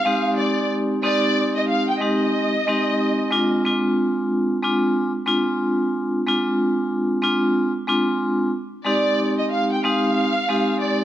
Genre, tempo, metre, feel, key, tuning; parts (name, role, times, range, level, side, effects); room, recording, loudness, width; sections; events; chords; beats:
hip hop; 92 BPM; 4/4; swing 61% on 16ths; F dorian; A4 = 440 Hz
warm studio violin section; melody; 0.0-3.6, 8.9-11.0 s; D5 to G5; -22 LUFS; right 1 dB; high-pass filter, low-pass filter, slapback echo
vibraphone with hard mallets; accompaniment; 0.1-11.0 s; Ab3 to G4; -19 LUFS; equal; high-pass filter, low-pass filter
moderate echo chamber reverb, RT60 1.7 s, small room ambience; -18 LUFS; side -12 dB against mid
0.0-11.0 A section
0.0 Fm7 (rootless); 3.3 Fm6/Ab; 8.9 Fm7
0.39 | 1.04 1.69 2.34 3.00 | 3.65 4.30 4.95 5.60 | 6.26 6.91 7.56 8.21 | 8.87 9.52 10.17 10.82